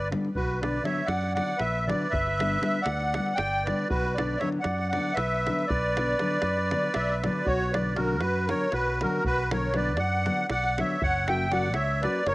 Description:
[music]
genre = balkan folk, Balkan wedding band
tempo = 236 BPM (eighths)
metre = 7/8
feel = straight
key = B harmonic minor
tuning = A4 = 440 Hz
[part]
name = musette accordion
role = melody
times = 0.0-12.3 s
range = A#4 to G5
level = -28 LUFS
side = equal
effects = none
[part]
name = accordion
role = second line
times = 0.0-12.3 s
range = F#4 to E5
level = -32 LUFS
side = right 3 dB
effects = cassette tape
[part]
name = fingered electric bass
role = bass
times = 0.0-12.3 s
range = F#1 to F#2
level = -31 LUFS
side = equal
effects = none
[part]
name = nylon-string guitar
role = accompaniment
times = 0.1-12.2 s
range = D3 to F#4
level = -32 LUFS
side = left 2 dB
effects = cassette tape
[part]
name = davul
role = percussion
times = 0.1-12.3 s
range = none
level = -35 LUFS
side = right 1 dB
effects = none
[sound]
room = light reverb, small room ambience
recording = home recording on cassette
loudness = -24 LUFS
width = side -19 dB against mid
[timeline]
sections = 0.0-7.5 A section; 7.5-12.3 B section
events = none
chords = 0.3 Bm; 2.1 G; 3.9 Bm; 11.0 F#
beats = 0.09 | 0.35 0.60 0.86 1.11 1.37 1.62 1.88 | 2.13 2.39 2.64 2.90 3.15 3.41 3.66 | 3.92 4.17 4.42 4.68 4.93 5.19 5.44 | 5.70 5.95 6.21 6.46 6.71 6.97 7.22 | 7.48 7.73 7.98 8.24 8.49 8.74 9.00 | 9.25 9.50 9.76 10.01 10.26 10.52 10.77 | 11.02 11.27 11.53 11.78 12.03 12.28

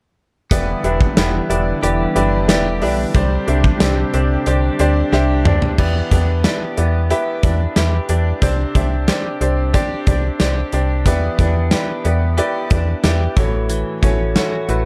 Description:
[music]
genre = 1980s-style pop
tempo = 91 BPM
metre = 4/4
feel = straight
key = E minor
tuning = A4 = 440 Hz
[part]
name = clear concert grand piano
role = accompaniment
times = 0.5-14.9 s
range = A2 to E5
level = -23 LUFS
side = equal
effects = none
[part]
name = warm analog pad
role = sustained chords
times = 0.5-5.8 s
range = C3 to G4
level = -26 LUFS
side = equal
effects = chorus, tremolo
[part]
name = direct-recorded clean electric guitar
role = riff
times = 0.5-14.9 s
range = E3 to G4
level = -29 LUFS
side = equal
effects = analog chorus, digital delay
[part]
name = slap-like FM bass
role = bass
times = 0.5-14.9 s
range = E1 to E2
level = -20 LUFS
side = equal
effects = none
[part]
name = gated 80s drum kit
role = drums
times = 0.5-14.8 s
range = crash cymbal, hi-hat, kick drum, snare drum, toms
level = -20 LUFS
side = equal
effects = none
[sound]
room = light reverb, studio reverb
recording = dark, warm production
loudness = -17 LUFS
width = mono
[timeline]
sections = 0.5-5.8 A section; 5.8-14.9 B section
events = drum fill 5.1-5.8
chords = 0.5 Em7; 3.1 Csus2; 5.8 Em7; 8.4 Csus2; 11.1 Em7; 13.4 A6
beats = | 0.51 1.17 1.83 2.49 | 3.15 3.81 4.46 5.12 | 5.78 6.44 7.10 7.76 | 8.42 9.08 9.74 10.40 | 11.06 11.72 12.38 13.04 | 13.70 14.36

